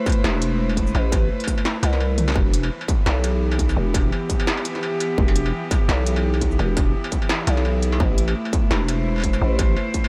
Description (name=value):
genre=half-time drum and bass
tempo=170 BPM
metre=4/4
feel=swing 56% on 16ths, half-time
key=E minor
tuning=A4 = 445 Hz
part: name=warm symphonic cello section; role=sustained chords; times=0.0-10.1 s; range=E3 to C5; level=-29 LUFS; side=equal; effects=sidechain pumping
part: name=electronic kick drum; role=drums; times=0.1-10.0 s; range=none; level=-24 LUFS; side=equal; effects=distortion, small room reverb
part: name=industrial drum kit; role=drums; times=0.1-10.1 s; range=hi-hat, shaker, snare drum, struck metal, toms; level=-30 LUFS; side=equal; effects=small room reverb
part: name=growling 808-style bass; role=bass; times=0.2-9.8 s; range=E1 to C2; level=-23 LUFS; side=equal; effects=none
room=light reverb, digital ambience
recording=none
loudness=-21 LUFS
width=mono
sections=0.0-10.1 A section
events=drum fill 2.2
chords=0.0 Am; 2.4 Em; 8.0 Am